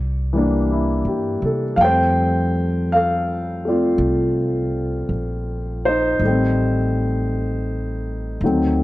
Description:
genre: jazz ballad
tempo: 54 BPM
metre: 4/4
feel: swing 67% on 8ths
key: F major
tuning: A4 = 439 Hz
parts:
  - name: warm concert grand piano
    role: accompaniment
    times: 0.0-8.8 s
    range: Eb3 to G5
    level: -19 LUFS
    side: left 1 dB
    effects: none
  - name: upright bass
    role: bass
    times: 0.0-8.8 s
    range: A1 to C3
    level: -23 LUFS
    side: equal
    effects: none
room: moderate spring reverb, RT60 1.8 s, small room ambience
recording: dark, warm production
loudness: -18 LUFS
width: side -17 dB against mid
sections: 0.0-8.8 A section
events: none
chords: 0.0 C9; 1.8 Fadd9; 6.2 Am7b5

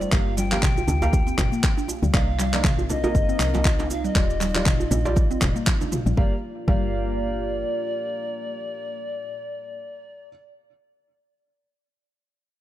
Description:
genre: afro house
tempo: 119 BPM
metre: 4/4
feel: swing 57% on 16ths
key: G minor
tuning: A4 = 435 Hz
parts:
  - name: polished pan flute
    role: melody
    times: 0.0-10.3 s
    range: D5 to G5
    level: -31 LUFS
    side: left 2 dB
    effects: analog delay
  - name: dark analog pad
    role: sustained chords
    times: 0.0-9.8 s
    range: G3 to F5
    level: -34 LUFS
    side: right 1 dB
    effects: chorus, phaser, vintage 12-bit sampler grit, sidechain pumping
  - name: mallet-like synth pluck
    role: arpeggios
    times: 0.0-6.8 s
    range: D3 to G4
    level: -31 LUFS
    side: left 1 dB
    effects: chorus, phaser, sidechain pumping, analog delay
  - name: felt-muted upright piano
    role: stabs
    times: 0.0-10.3 s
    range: G3 to F5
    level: -33 LUFS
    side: right 2 dB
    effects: sidechain pumping, analog delay
  - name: woody FM bass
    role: bass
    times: 0.0-7.6 s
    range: Eb1 to D2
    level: -26 LUFS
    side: equal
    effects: sidechain pumping
  - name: deep house drum kit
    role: drums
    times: 0.0-6.2 s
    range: handclaps, shaker, toms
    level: -27 LUFS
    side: equal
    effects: overdrive
  - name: electronic kick drum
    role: drums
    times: 0.1-6.8 s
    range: none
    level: -22 LUFS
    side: equal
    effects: none
  - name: congas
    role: percussion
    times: 0.4-6.2 s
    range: none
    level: -33 LUFS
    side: left 2 dB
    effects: none
  - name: djembe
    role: percussion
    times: 0.4-6.0 s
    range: none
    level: -30 LUFS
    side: right 2 dB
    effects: none
room: studio reverb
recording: dry, gritty hardware recording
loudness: -20 LUFS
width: side -13 dB against mid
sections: 0.0-6.2 A section; 6.2-10.2 B section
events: drop 0.0-6.2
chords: 0.1 Gm7; 2.1 Cm9; 4.2 Ebmaj9; 6.2 Gm7

